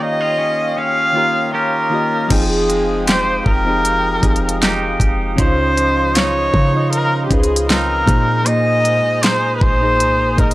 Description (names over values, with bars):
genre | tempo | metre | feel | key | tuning
contemporary R&B | 78 BPM | 4/4 | swing 54% on 16ths | F minor | A4 = 438 Hz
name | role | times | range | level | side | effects
warm viola | melody | 0.0-10.5 s | G4 to F5 | -17 LUFS | equal | none
soft electric-piano-like synth keys | accompaniment | 0.0-10.5 s | Bb2 to G5 | -22 LUFS | left 1 dB | chorus
hollow soft pad | sustained chords | 0.0-10.5 s | Ab3 to Eb6 | -27 LUFS | equal | chorus
twangy electric guitar | arpeggios | 0.0-10.5 s | Bb2 to G4 | -24 LUFS | right 3 dB | spring reverb
clean 808-style bass | bass | 2.3-10.5 s | F1 to Db3 | -21 LUFS | equal | none
smooth R&B drum kit | drums | 2.3-10.5 s | crash cymbal, hi-hat, kick drum, snare drum | -17 LUFS | equal | none
room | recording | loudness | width
little or no reverb | dry, gritty hardware recording | -13 LUFS | side -17 dB against mid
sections
0.0-2.3 A section; 2.3-10.5 B section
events
break 0.0-2.3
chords
0.0 Eb9; 2.3 Fm9; 5.4 Dbmaj9; 8.1 Bb9sus4